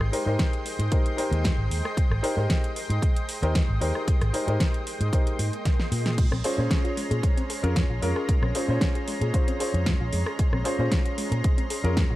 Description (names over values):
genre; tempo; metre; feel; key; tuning
nu-disco, nu disco; 114 BPM; 4/4; straight; Bb dorian; A4 = 444 Hz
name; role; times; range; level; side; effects
warm baby grand piano; accompaniment; 0.0-12.0 s; Db4 to C5; -30 LUFS; left 1 dB; vintage 12-bit sampler grit, sidechain pumping, digital delay
lush unison pad; sustained chords; 0.0-12.2 s; Ab3 to C6; -34 LUFS; equal; chorus, vintage 12-bit sampler grit, sidechain pumping
fingered electric bass with an envelope filter; bass; 0.0-12.2 s; Ab1 to Bb2; -26 LUFS; equal; none
pop drum kit; drums; 0.0-12.1 s; crash cymbal, hi-hat, rim click, snare drum; -31 LUFS; equal; none
electronic kick drum; drums; 0.4-12.1 s; none; -24 LUFS; equal; none
swell; sound effects; 5.3-6.2 s; none; -39 LUFS; left 1 dB; none
soft round pluck; arpeggios; 6.2-12.2 s; Ab3 to Ab4; -35 LUFS; left 2 dB; chorus, sidechain pumping, dub echo
room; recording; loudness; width
little or no reverb; none; -22 LUFS; side -16 dB against mid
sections
0.0-12.2 A section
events
swell 5.3-6.2; drum fill 5.7-6.2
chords
0.0 Abmaj7; 6.2 Bbm9